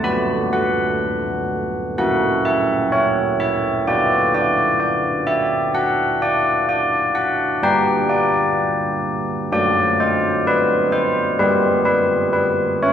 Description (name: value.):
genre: classical, tune for church bells.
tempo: 63 BPM.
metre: 4/4.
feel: straight.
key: B minor.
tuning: A4 = 441 Hz.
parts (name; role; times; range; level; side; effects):
carillon bells; solo; 0.0-12.9 s; F#3 to B5; -16 LUFS; equal; none.
room: wet concert hall reverb, RT60 2.0 s.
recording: heard from further back in the room.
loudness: -16 LUFS.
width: side -9 dB against mid.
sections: 0.0-12.9 A section.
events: none.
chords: 0.0 Bm; 2.0 F#7/A#; 3.9 Bm; 7.6 G; 9.5 D/F#; 11.4 G5.